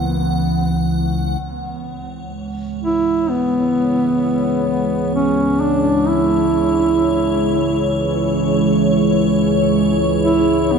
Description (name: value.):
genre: dark ambient drone.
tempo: free time.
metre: none.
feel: none.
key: C# minor.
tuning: A4 = 442 Hz.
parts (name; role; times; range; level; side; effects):
carillon bells; arpeggios; 0.0-2.8 s; none; barely audible; none; none.
analog drone; drone; 0.0-10.8 s; C#2 to E3; -21 LUFS; left 1 dB; chorus.
icy glass pad; texture; 0.0-10.8 s; C#5 to F#5; -29 LUFS; left 2 dB; chorus, built-in reverb.
deep dark ambient pad; sustained chords; 2.2-10.8 s; G#3 to C#5; -19 LUFS; right 1 dB; chorus, built-in reverb.
dark duduk; melody; 2.8-10.8 s; B3 to E4; -18 LUFS; right 1 dB; ping-pong delay.
room: wet cathedral reverb, RT60 6.4 s.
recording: none.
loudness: -14 LUFS.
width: side -6 dB against mid.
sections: 0.0-1.4 A section; 1.4-10.8 B section.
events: fade-in on synth drone 1.4-10.8; fade-in on ambient pad 1.4-10.8.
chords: 0.0 E5; 1.4 C#m.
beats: free time.